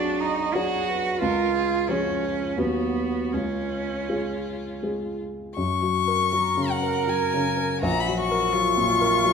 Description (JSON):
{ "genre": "classical, slow romantic movement for piano trio", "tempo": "82 BPM", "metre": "3/4", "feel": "uneven beats, rubato", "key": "F# major", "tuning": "A4 = 439 Hz", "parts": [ { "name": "warm violin", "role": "melody", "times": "0.0-9.3 s", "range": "E#4 to C#6", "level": "-27 LUFS", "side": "left 7 dB", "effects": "none" }, { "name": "rich cello", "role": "second line", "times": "0.0-9.3 s", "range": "B3 to A#4", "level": "-26 LUFS", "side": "right 6 dB", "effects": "none" }, { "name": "dark baby grand piano", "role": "accompaniment", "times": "0.0-9.3 s", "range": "A#1 to B4", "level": "-26 LUFS", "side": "left 2 dB", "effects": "none" } ], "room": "moderate recital hall reverb, RT60 1.3 s", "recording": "none", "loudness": "-22 LUFS", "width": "side -6 dB against mid", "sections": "0.0-5.6 A section; 5.6-9.3 B section", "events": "none", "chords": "0.0 G#m7b5/B; 1.2 C#; 2.6 B/D#; 3.3 C#; 5.6 F#; 7.8 F#/A#" }